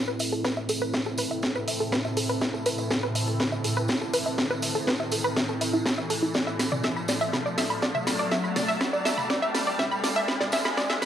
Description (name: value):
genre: melodic techno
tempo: 122 BPM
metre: 4/4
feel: straight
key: A minor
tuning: A4 = 441 Hz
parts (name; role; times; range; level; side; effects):
- deep dark ambient pad; sustained chords; 0.1-11.1 s; A3 to A5; -33 LUFS; equal; chorus, built-in reverb, sidechain pumping
- wide unison pluck; arpeggios; 0.0-11.1 s; E4 to B5; -29 LUFS; equal; sidechain pumping, tape echo
- swarming drone; drone; 0.0-11.1 s; A2; -35 LUFS; equal; built-in reverb, sidechain pumping
- riser; sound effects; 1.3-11.1 s; none; -35 LUFS; left 1 dB; none
- tambourine; percussion; 0.1-11.1 s; none; -37 LUFS; right 3 dB; none
- house drum kit; drums; 0.2-11.1 s; hi-hat, snare drum, toms; -28 LUFS; equal; overdrive, sidechain pumping on toms, sidechain pumping on hats
- electronic kick drum; drums; 0.4-10.9 s; none; -38 LUFS; equal; none
room: moderate recital hall reverb, RT60 1.4 s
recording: dry, gritty hardware recording, cassette tape, high-pass filter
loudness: -24 LUFS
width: side -10 dB against mid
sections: 0.0-11.1 A section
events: build-up 0.0-11.1; drum fill 0.0-11.1; filter sweep on synth arpeggio sound 0.0-11.1; riser 1.3-11.1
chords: 0.0 Am; 6.3 Dm/A